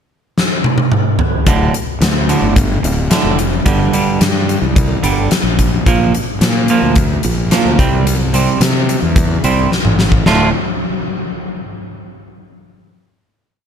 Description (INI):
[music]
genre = quiet-loud alternative rock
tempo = 109 BPM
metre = 4/4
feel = straight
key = D minor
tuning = A4 = 440 Hz
[part]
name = huge arena drum kit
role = drums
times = 0.4-10.4 s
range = hi-hat, kick drum, snare drum, toms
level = -14 LUFS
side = left 1 dB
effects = none
[part]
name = twangy electric guitar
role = arpeggios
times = 1.5-10.5 s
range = D2 to F4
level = -17 LUFS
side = right 5 dB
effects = wide subtle chorus
[part]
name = fuzz fingered electric bass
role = bass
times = 1.5-10.5 s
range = D1 to C3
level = -16 LUFS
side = equal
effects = overdrive
[sound]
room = small room ambience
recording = none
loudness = -11 LUFS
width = side -8 dB against mid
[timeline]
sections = 0.0-1.5 pickup bar; 1.5-10.3 verse; 10.3-12.4 final chord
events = drum fill 0.4-1.5, 9.7-10.3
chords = 0.0 N.C.; 1.5 Dm; 3.7 Gm; 5.9 Bb; 7.8 C; 10.3 Dm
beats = 0.37 0.92 | 1.47 2.01 2.56 3.11 | 3.66 4.21 4.76 5.32 | 5.87 6.42 6.96 7.51 | 8.06 8.61 9.16 9.71 | 10.25